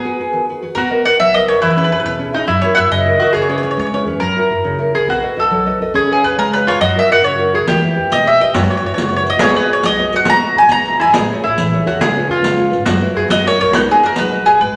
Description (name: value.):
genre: italian folk, Italian serenade.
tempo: 139 BPM (dotted quarters).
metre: 6/8.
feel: straight.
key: B major.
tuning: A4 = 444 Hz.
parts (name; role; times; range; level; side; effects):
mandolin; melody; 0.0-4.0, 6.1-11.1, 13.3-14.8 s; G#4 to A#5; -16 LUFS; equal; none.
nylon-string guitar; accompaniment; 0.0-14.8 s; B2 to E#5; -21 LUFS; equal; none.
mandolin; second line; 0.8-14.4 s; D#4 to A#4; -21 LUFS; equal; none.
upright bass; bass; 0.8-14.8 s; G#1 to F#2; -28 LUFS; equal; none.
riq; percussion; 7.7-14.5 s; none; -22 LUFS; equal; none.
room: wet large studio reverb, RT60 1.3 s.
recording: none.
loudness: -14 LUFS.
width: mono.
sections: 0.8-14.6 A section.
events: break 0.0-0.8.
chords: 0.0 G#m7; 0.8 Bmaj7; 1.6 E6; 2.5 F#7; 3.3 C#m7; 4.2 F#7; 5.1 B7; 5.9 C#7; 6.8 F#7; 7.7 Em; 8.5 F#7sus4; 9.4 B; 10.3 Emaj7/B; 11.1 Amaj7; 12.0 C#7; 12.9 F#7sus4; 13.3 F#7; 13.7 B6.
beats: 0.33 | 0.76 1.19 | 1.63 2.06 | 2.48 2.92 | 3.35 3.78 | 4.21 4.65 | 5.08 5.52 | 5.95 6.38 | 6.81 7.24 | 7.67 8.11 | 8.54 8.97 | 9.40 9.83 | 10.26 10.70 | 11.14 11.57 | 12.00 12.43 | 12.86 13.30 | 13.73 14.17 | 14.61.